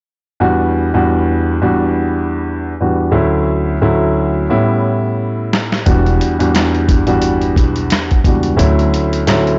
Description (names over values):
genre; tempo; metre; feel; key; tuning
hip hop, boom-bap hip-hop; 88 BPM; 4/4; swing 56% on 16ths; E dorian; A4 = 440 Hz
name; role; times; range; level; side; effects
dark grand piano; accompaniment; 0.4-9.6 s; D2 to F#4; -16 LUFS; equal; cassette tape
lo-fi sampler-style drum kit; drums; 5.5-9.6 s; hi-hat, kick drum, rim click, snare drum; -18 LUFS; equal; none
upright bass; bass; 5.9-8.9 s; E1 to D2; -20 LUFS; equal; none
room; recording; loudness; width
small room reverb; dry, gritty hardware recording, nothing above 7.7 kHz; -15 LUFS; mono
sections
0.4-9.6 A section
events
drum fill 4.5-5.9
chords
0.4 Em7; 3.1 Dmaj7; 4.5 A7; 5.9 Em7; 8.6 Dmaj7